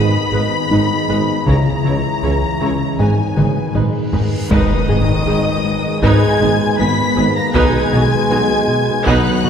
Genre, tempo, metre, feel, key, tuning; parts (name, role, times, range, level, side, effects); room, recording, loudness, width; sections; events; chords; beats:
cinematic, hybrid orchestral and electronic film score; 79 BPM; 4/4; straight; G# minor; A4 = 440 Hz
rich symphonic violin section; melody; 0.0-9.5 s; G#5 to B6; -24 LUFS; left 3 dB
rich studio violin section; second line; 0.0-9.5 s; D#5 to B5; -24 LUFS; left 3 dB
rich studio viola section; accompaniment; 0.0-9.5 s; F#3 to C#5; -23 LUFS; right 1 dB
mellow French horn section; sustained chords; 0.0-9.5 s; D#3 to E4; -22 LUFS; left 1 dB
warbly tape-like pad; sustained chords; 0.0-9.5 s; D#3 to D#5; -23 LUFS; equal; chorus, built-in reverb
tight sequenced synth; arpeggios; 0.0-9.5 s; C#3 to B4; -27 LUFS; left 1 dB
fat analog bass; riff; 0.0-9.5 s; C#2 to B3; -20 LUFS; equal
rich symphonic cello section; bass; 0.0-9.5 s; G#2 to C#3; -25 LUFS; right 2 dB
rich symphonic double bass section; bass; 0.0-9.5 s; G#1 to C#2; -24 LUFS; right 1 dB
warm tuba; bass; 0.0-9.5 s; G#1 to C#2; -24 LUFS; right 2 dB
taiko ensemble; drums; 1.5-9.5 s; -22 LUFS; equal
reverse cymbal and impact; sound effects; 4.2-7.5 s; -26 LUFS; left 1 dB
wet scoring stage reverb, RT60 2.1 s; heard from further back in the room; -13 LUFS; side -8 dB against mid
0.0-4.5 A section; 4.5-9.5 B section
drum fill 3.4-4.5; reverse cymbal 4.2; impact 4.5-7.5
0.0 G#m; 1.5 C#m; 3.0 G#m; 7.5 B
0.71 | 1.47 2.23 2.99 3.75 | 4.51 5.27 6.03 6.79 | 7.55 8.31 9.07